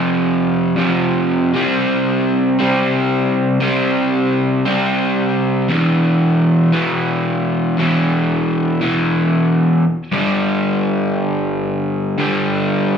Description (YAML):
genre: rock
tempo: 116 BPM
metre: 4/4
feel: straight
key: unclear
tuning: A4 = 440 Hz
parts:
  - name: crunchy overdriven guitar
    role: solo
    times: 0.0-13.0 s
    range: E2 to C4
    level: -14 LUFS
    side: equal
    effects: slapback echo
room: wet club reverb, RT60 0.8 s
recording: live gig heard through the venue's PA, club reverb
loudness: -14 LUFS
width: side -7 dB against mid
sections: 0.0-10.1 A section; 10.1-13.0 B section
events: none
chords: 0.0 F5; 1.6 C5; 5.7 E5; 10.1 G5